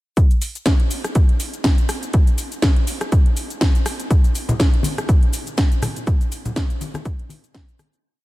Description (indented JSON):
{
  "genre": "house",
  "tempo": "122 BPM",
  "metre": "4/4",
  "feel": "swing 56% on 16ths",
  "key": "none",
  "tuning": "none",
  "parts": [
    { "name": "electronic kick drum", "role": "drums", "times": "0.2-7.7 s", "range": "none", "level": "-16 LUFS", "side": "equal", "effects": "none" },
    { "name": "house drum kit", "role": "drums", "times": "0.2-8.0 s", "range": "hi-hat, rim click, shaker, snare drum", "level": "-24 LUFS", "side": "equal", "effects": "sidechain pumping on hats, sidechain pumping on perc" },
    { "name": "maracas and congas", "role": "percussion", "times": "4.1-8.0 s", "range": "none", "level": "-26 LUFS", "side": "left 1 dB", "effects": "sidechain pumping on perc" }
  ],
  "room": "digital ambience",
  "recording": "none",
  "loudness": "-16 LUFS",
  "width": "side -18 dB against mid",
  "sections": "0.2-8.0 drop",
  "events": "drop 0.2-8.0; fade-out 5.4-8.0",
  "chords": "none"
}